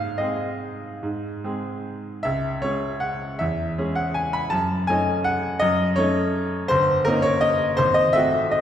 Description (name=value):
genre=classical, piano waltz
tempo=142-176 BPM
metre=3/4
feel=rubato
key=C# minor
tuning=A4 = 437 Hz
part: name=bright baby grand piano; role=solo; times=0.0-8.6 s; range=G1 to B5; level=-20 LUFS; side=equal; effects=none
room=wet recital hall reverb, RT60 1.7 s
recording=heard from further back in the room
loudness=-20 LUFS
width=side -9 dB against mid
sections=0.0-8.6 A section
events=none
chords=0.0 G#; 2.2 C#m; 3.4 C#m/E; 4.5 D#m7b5/F#; 6.7 D#7/G; 7.8 G#7b9